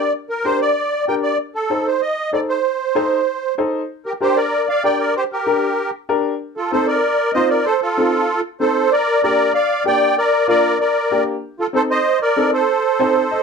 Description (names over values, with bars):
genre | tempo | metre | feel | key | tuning
latin | 191 BPM | 4/4 | straight | G minor | A4 = 440 Hz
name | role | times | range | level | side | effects
musette accordion | melody | 0.0-13.4 s | F4 to G5 | -16 LUFS | right 2 dB | none
warm upright piano | accompaniment | 0.0-13.4 s | Bb3 to Eb5 | -20 LUFS | left 3 dB | none
room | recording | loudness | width
moderate studio ambience, RT60 0.5 s | dark, warm production | -16 LUFS | side -5 dB against mid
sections
0.0-3.9 A section; 3.9-13.4 A section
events
upright piano fill 13.0-13.4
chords
0.0 Gm; 1.4 Adim; 3.9 Gm; 6.4 Adim; 8.9 Gm; 11.4 Adim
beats
| 0.14 0.45 0.76 1.08 | 1.39 1.70 2.02 2.33 | 2.64 2.96 3.27 3.58 | 3.90 4.21 4.52 4.84 | 5.15 5.46 5.78 6.09 | 6.41 6.72 7.03 7.35 | 7.66 7.97 8.29 8.60 | 8.92 9.23 9.54 9.86 | 10.17 10.48 10.80 11.11 | 11.43 11.74 12.05 12.37 | 12.68 12.99 13.30